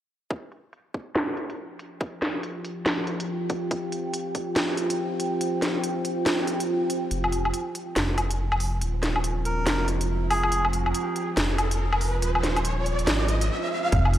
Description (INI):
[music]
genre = deep dubstep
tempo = 141 BPM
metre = 4/4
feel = swing 61% on 16ths, half-time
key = F minor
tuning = A4 = 440 Hz
[part]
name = deep dark ambient pad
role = sustained chords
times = 2.3-14.2 s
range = F4 to G5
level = -29 LUFS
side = right 1 dB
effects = chorus, built-in reverb
[part]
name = electronic kick drum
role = drums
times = 0.3-4.5, 13.9-14.0 s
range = none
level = -29 LUFS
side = equal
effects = high-pass filter on kick, high-pass filter on room
[part]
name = garage drum kit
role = drums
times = 0.3-14.2 s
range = hi-hat, snare drum, woodblock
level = -27 LUFS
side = equal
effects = low-pass filter on hats, low-pass filter on snare, low-pass filter on perc, low-pass filter on room
[part]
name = dark detuned saw bass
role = bass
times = 7.1-14.2 s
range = Eb1 to Ab1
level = -26 LUFS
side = equal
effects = none
[part]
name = riser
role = sound effects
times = 9.1-13.9 s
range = none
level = -32 LUFS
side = right 1 dB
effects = none
[part]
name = melodica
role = melody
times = 9.5-10.6 s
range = Ab4 to Bb4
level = -32 LUFS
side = equal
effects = low-pass filter, dub echo
[sound]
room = light reverb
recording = dry, gritty hardware recording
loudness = -24 LUFS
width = side -12 dB against mid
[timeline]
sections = 0.3-7.1 A section; 7.1-13.9 B section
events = filter sweep on drum 0.3-7.1; filter sweep on ambient pad 0.3-7.1, 7.1-13.9; kick drops out 5.4-7.1; build-up 7.1-13.9; riser 9.1-13.9; stop 13.5-13.9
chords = 0.3 F5; 7.1 Fm